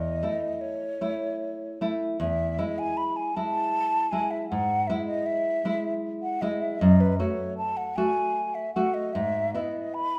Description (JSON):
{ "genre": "romantic duo for flute and classical guitar", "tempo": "77 BPM", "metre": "3/4", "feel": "rubato", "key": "E major", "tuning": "A4 = 440 Hz", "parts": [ { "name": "mellow hollow concert flute", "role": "melody", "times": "0.0-10.2 s", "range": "B4 to B5", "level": "-30 LUFS", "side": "equal", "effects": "none" }, { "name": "nylon-string guitar", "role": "accompaniment", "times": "0.0-10.2 s", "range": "E2 to F#4", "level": "-30 LUFS", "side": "equal", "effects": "none" } ], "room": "moderate recital hall reverb, RT60 1.7 s", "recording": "none", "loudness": "-27 LUFS", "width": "mono", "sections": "0.0-10.2 A section", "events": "none", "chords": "0.0 A/E; 2.2 E; 4.5 E/G#; 6.8 F#madd9; 9.1 E/G#" }